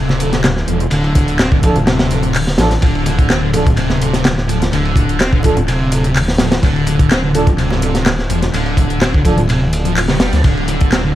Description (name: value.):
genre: breakbeat, breaks.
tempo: 126 BPM.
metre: 4/4.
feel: straight.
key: D minor.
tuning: A4 = 440 Hz.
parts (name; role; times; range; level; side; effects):
thick fuzz guitar; riff; 0.0-11.1 s; C3 to C4; -18 LUFS; left 1 dB; distortion, tube saturation, tape echo.
dark detuned saw bass; bass; 0.0-11.2 s; D1 to D2; -18 LUFS; equal; tube saturation.
crunchy breakbeat drum kit; drums; 0.1-11.0 s; hi-hat, kick drum, ride cymbal, snare drum; -16 LUFS; equal; none.
congas; percussion; 0.1-10.8 s; none; -25 LUFS; right 1 dB; none.
house drum kit; drums; 0.2-11.0 s; handclaps, hi-hat; -24 LUFS; equal; tape echo.
mellow brass ensemble; stabs; 1.6-9.4 s; D4 to A4; -23 LUFS; right 3 dB; tape echo.
room: light reverb, small room ambience.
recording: echo-heavy mix, vinyl crackle.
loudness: -12 LUFS.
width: side -13 dB against mid.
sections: 0.0-11.2 A section.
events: none.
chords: 0.0 Dm.